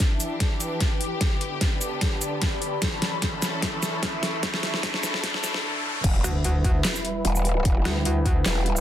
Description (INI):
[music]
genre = heavy wobble dubstep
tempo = 149 BPM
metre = 4/4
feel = half-time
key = E dorian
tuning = A4 = 441 Hz
[part]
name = rich studio string section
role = sustained chords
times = 0.0-8.8 s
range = D3 to B4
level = -32 LUFS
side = equal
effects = sidechain pumping, low-pass filter
[part]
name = dubstep drum kit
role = drums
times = 0.0-8.8 s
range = crash cymbal, handclaps, hi-hat, shaker, snare drum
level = -27 LUFS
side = equal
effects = overdrive
[part]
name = electronic kick drum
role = drums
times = 0.0-8.3 s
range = none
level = -24 LUFS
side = equal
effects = none
[part]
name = riser and impact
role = sound effects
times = 1.4-7.7 s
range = none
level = -34 LUFS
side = equal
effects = none
[part]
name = warbly tape-like pad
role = texture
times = 0.0-8.8 s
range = D4 to E6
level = -33 LUFS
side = left 1 dB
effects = chorus, built-in reverb, sidechain pumping
[part]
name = growl bass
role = bass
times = 6.0-8.8 s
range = E1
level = -24 LUFS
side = equal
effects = chorus, overdrive
[part]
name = metallic wobble bass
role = bass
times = 6.2-8.4 s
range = D2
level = -23 LUFS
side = equal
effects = chorus, overdrive
[sound]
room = light reverb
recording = dense, heavily limited modern master, high-pass filter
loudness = -22 LUFS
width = side -11 dB against mid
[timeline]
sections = 0.0-6.0 A section; 6.0-8.8 B section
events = build-up 0.0-6.0; drum fill 0.0-5.6; filter sweep 0.0-6.0; riser 1.4-6.0; drop 6.0-8.8; impact 6.0-7.7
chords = 0.0 Em7; 1.2 G; 2.8 A; 4.4 Dsus2; 6.0 Em